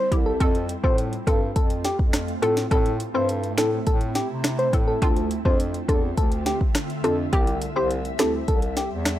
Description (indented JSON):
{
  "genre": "dancehall",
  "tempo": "104 BPM",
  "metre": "4/4",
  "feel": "straight",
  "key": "A minor",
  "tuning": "A4 = 440 Hz",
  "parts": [
    { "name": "soft struck synth lead", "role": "melody", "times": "0.0-8.9 s", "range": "G4 to C5", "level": "-26 LUFS", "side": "equal", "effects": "chorus" },
    { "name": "ethereal airy pad", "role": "sustained chords", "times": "0.0-9.2 s", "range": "D3 to E5", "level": "-33 LUFS", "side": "right 2 dB", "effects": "ensemble chorus, built-in reverb, sidechain pumping" },
    { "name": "hollow square pluck", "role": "accompaniment", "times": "0.1-8.5 s", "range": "C4 to A4", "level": "-28 LUFS", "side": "left 1 dB", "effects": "chorus" },
    { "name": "warm bass clarinet", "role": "bass", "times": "0.1-9.2 s", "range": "C2 to C3", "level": "-29 LUFS", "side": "equal", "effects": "none" },
    { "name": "afro-pop drum kit", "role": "drums", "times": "0.1-9.2 s", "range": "finger snaps, hi-hat, kick drum, rim click, snare drum", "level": "-23 LUFS", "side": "equal", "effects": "none" }
  ],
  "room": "little or no reverb",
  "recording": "dry, gritty hardware recording, transformer saturation",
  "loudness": "-20 LUFS",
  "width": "side -13 dB against mid",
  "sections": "0.0-9.2 A section",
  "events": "none",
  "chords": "0.4 F; 2.7 Am; 5.0 Dm7; 7.3 C",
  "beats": "| 0.41 0.98 1.56 2.14 | 2.71 3.29 3.87 4.44 | 5.02 5.60 6.17 6.75 | 7.33 7.91 8.48 9.06"
}